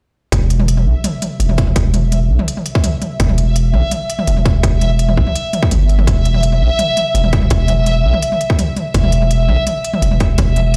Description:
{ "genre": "half-time drum and bass", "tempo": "167 BPM", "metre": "4/4", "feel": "half-time", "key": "unclear", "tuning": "A4 = 440 Hz", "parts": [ { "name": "long sustained 808-style bass", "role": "bass", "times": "0.3-10.8 s", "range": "E1 to B1", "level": "-16 LUFS", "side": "equal", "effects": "none" }, { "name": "electronic kick drum", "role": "drums", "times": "0.3-10.5 s", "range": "none", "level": "-17 LUFS", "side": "equal", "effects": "overdrive, studio ambience" }, { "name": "industrial drum kit", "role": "drums", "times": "0.3-10.8 s", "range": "hi-hat, toms", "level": "-24 LUFS", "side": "equal", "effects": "studio ambience" }, { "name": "backwards swelling texture", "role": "texture", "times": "0.8-10.8 s", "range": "E5", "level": "-24 LUFS", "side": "equal", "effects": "built-in reverb" } ], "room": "little or no reverb", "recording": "played on a big sound system in a bare room, stone room reverb", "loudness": "-15 LUFS", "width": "mono", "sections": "0.3-10.8 A section", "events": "none", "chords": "none", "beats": "| 0.33 0.68 1.04 1.40 | 1.76 2.12 2.48 2.84 | 3.20 3.56 3.92 4.28 | 4.64 5.00 5.36 5.71 | 6.07 6.43 6.79 7.15 | 7.51 7.87 8.23 8.59 | 8.95 9.31 9.67 10.03 | 10.38 10.74" }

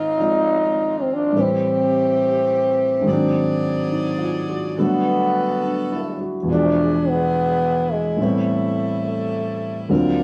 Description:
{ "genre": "jazz ballad", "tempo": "70 BPM", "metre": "4/4", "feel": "swing 66% on 8ths", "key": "unclear", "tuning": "A4 = 442 Hz", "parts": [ { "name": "growling trombone", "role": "melody", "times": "0.0-10.2 s", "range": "G#3 to Eb4", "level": "-22 LUFS", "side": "equal", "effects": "none" }, { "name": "warm grand piano", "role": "accompaniment", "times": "0.0-10.2 s", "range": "D2 to D5", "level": "-24 LUFS", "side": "equal", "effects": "none" }, { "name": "clear saxophone section", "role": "sustained chords", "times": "0.0-10.2 s", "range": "Eb3 to D5", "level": "-34 LUFS", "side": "equal", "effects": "none" } ], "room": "moderate studio reverb, RT60 0.6 s", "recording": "band playing live in one room, studio reverb", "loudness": "-20 LUFS", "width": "mono", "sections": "0.0-10.2 A section", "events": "none", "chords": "0.0 Ab6; 1.3 Am7; 3.1 Ab7#11; 4.8 Gmaj9; 6.5 E7b9; 8.2 Am7", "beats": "0.48 | 1.34 2.19 3.05 3.91 | 4.76 5.62 6.47 7.33 | 8.19 9.04 9.90" }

